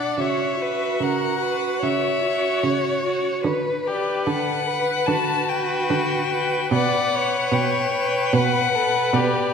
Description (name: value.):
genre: classical, slow romantic movement for string quartet.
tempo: 74 BPM.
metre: 4/4.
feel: rubato.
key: B minor.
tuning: A4 = 442 Hz.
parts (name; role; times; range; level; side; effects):
rich violin; melody; 0.0-9.5 s; C#5 to A5; -25 LUFS; left 7 dB; none.
warm violin; second line; 0.0-9.5 s; F#4 to D5; -25 LUFS; left 2 dB; none.
clear viola; accompaniment; 0.0-9.5 s; D4 to B4; -26 LUFS; right 3 dB; none.
rich cello; bass; 0.0-9.5 s; B2 to D3; -26 LUFS; right 5 dB; none.
room: wet concert hall reverb, RT60 2.2 s.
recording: minimal, uncompressed stereo recording.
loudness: -19 LUFS.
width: side -6 dB against mid.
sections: 0.0-9.5 A section.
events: none.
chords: 0.2 F#5/C#; 3.5 Bm/D; 6.7 Bm.